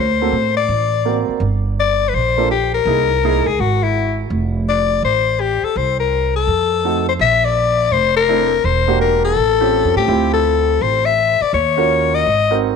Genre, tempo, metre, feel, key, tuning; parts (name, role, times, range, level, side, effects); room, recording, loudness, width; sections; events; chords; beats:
jazz, small-group swing and bop; 166 BPM; 4/4; swing 65% on 8ths; F major; A4 = 440 Hz
growling soprano saxophone; melody; 0.0-12.6 s; E4 to E5; -16 LUFS; left 8 dB
upright bass; bass; 0.0-12.8 s; E1 to A2; -20 LUFS; right 3 dB
warm grand piano; accompaniment; 0.2-3.4, 6.8-12.8 s; A3 to Bb4; -21 LUFS; right 15 dB
moderate plate reverb, RT60 2.7 s; 1960s-style stereo with parts hard left and right; -14 LUFS; side -6 dB against mid
0.0-7.2 A section; 7.2-12.8 B section
0.0 D7b13; 1.4 Gm; 2.9 C7alt; 4.3 F; 5.8 N.C.; 6.5 F7b9; 7.2 Bbmaj9#11; 8.6 Em7b5; 9.4 A7alt; 10.1 Dm11; 11.5 Ebm7
0.33 0.69 1.06 | 1.42 1.78 2.14 2.50 | 2.86 3.22 3.58 3.94 | 4.31 4.67 5.03 5.39 | 5.75 6.11 6.47 6.84 | 7.20 7.56 7.92 8.28 | 8.64 9.01 9.37 9.73 | 10.09 10.45 10.81 11.18 | 11.54 11.90 12.26 12.62